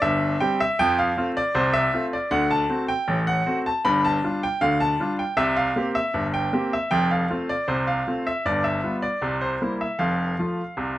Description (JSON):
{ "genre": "ragtime piano", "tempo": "78 BPM", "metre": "2/4", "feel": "straight", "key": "F major", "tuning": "A4 = 440 Hz", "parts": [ { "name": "bright grand piano", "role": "solo", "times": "0.0-11.0 s", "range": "F1 to B5", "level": "-21 LUFS", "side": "equal", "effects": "none" } ], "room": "light reverb", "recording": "minimal, uncompressed stereo recording", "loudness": "-21 LUFS", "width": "side -14 dB against mid", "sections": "0.0-11.0 A section", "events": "none", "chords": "0.0 C5; 0.8 F; 2.3 D7; 3.8 G5; 5.4 C5; 6.9 F; 8.4 G7; 9.2 C7; 10.0 F" }